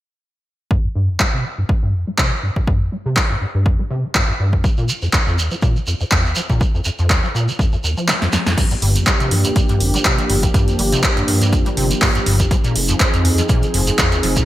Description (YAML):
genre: acid house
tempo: 122 BPM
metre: 4/4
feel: swing 55% on 16ths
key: unclear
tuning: A4 = 441 Hz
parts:
  - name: deep acid bass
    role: riff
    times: 0.7-14.4 s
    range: Eb2 to G3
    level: -20 LUFS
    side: equal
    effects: overdrive, ensemble chorus, cassette tape, sidechain pumping
  - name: electronic kick drum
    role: drums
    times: 0.7-14.4 s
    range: none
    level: -18 LUFS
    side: equal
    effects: overdrive
  - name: punchy analog drum machine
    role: drums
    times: 1.2-14.4 s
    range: crash cymbal, handclaps, hi-hat, snare drum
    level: -20 LUFS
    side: equal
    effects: overdrive, gated reverb
  - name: shekere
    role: percussion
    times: 4.6-14.4 s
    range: none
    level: -26 LUFS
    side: right 3 dB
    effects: none
  - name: warm analog pad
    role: sustained chords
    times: 8.8-14.4 s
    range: F3 to Ab4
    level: -21 LUFS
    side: equal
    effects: chorus, sidechain pumping
  - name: saturated sub bass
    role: bass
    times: 8.8-14.4 s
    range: F1 to G2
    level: -20 LUFS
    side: equal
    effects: sidechain pumping
room: light reverb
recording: bright 1980s-style digital production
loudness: -15 LUFS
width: side -14 dB against mid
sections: 0.7-8.6 A section; 8.6-14.4 B section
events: filter sweep on acid bass 0.7-8.6; kick drops out 8.1-8.6; drum fill 8.1-8.6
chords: 0.7 Fsus2; 4.6 F5; 8.6 Gm7; 12.5 Fm7